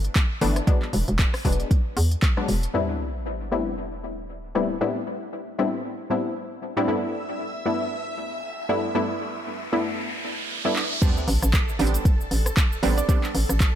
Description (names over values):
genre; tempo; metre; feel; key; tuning
deep house; 116 BPM; 4/4; swing 57% on 16ths; A minor; A4 = 440 Hz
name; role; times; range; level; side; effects
filtered dub chord stab; stabs; 0.0-13.3 s; G2 to E4; -26 LUFS; left 1 dB; chorus, cassette tape, sidechain pumping, tape echo
hollow knocking FM bass; bass; 0.0-2.7, 11.3-13.7 s; E1 to E2; -22 LUFS; equal; sidechain pumping
deep house drum kit; drums; 0.0-2.7, 10.8-13.7 s; crash cymbal, handclaps, hi-hat, rim click, shaker; -29 LUFS; equal; none
electronic kick drum; drums; 0.2-2.3, 11.0-13.7 s; none; -20 LUFS; equal; none
sub drop and riser; sound effects; 2.7-13.1 s; none; -32 LUFS; equal; none
string machine, violins; texture; 6.9-13.8 s; A4 to E6; -35 LUFS; equal; ensemble chorus
hollow square pluck; melody; 13.0-13.2 s; D5; -33 LUFS; right 5 dB; chorus, cassette tape, dub echo
room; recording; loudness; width
light reverb; none; -22 LUFS; side -10 dB against mid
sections
0.0-2.7 A section; 2.7-11.0 B section; 11.0-13.8 C section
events
impact 2.7-4.8, 11.0-13.1; riser 8.2-11.0; drum fill 10.8; drop 11.0-13.8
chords
0.0 G69; 0.7 E9; 2.7 Am11; 6.9 G69; 11.0 Am11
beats
0.16 | 0.67 1.19 1.71 2.23 | 2.74 3.26 3.78 4.29 | 4.81 5.33 5.85 6.36 | 6.88 7.40 7.92 8.43 | 8.95 9.47 9.98 10.50 | 11.02 11.54 12.05 12.57 | 13.09 13.61